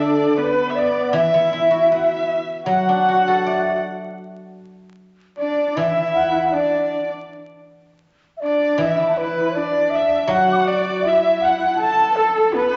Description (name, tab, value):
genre	chinese traditional, Chinese chamber ensemble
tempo	79 BPM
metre	4/4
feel	rubato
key	D gong mode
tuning	A4 = 440 Hz
part	reedy xiao	melody	0.0-12.8 s	A4 to D6	-23 LUFS	equal	none
part	breathy mellow bass bansuri	second line	0.0-12.8 s	A4 to A5	-25 LUFS	equal	none
part	clear erhu	second line	0.0-12.8 s	A4 to E6	-27 LUFS	equal	none
part	dark horsehead fiddle	second line	0.0-12.8 s	B3 to A4	-27 LUFS	equal	none
part	guzheng	accompaniment	0.0-12.5 s	D3 to D5	-28 LUFS	equal	none
room	wet recital hall reverb, RT60 1.6 s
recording	vinyl crackle, nothing above 7.8 kHz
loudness	-19 LUFS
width	mono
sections	0.0-12.8 A section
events	none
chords	none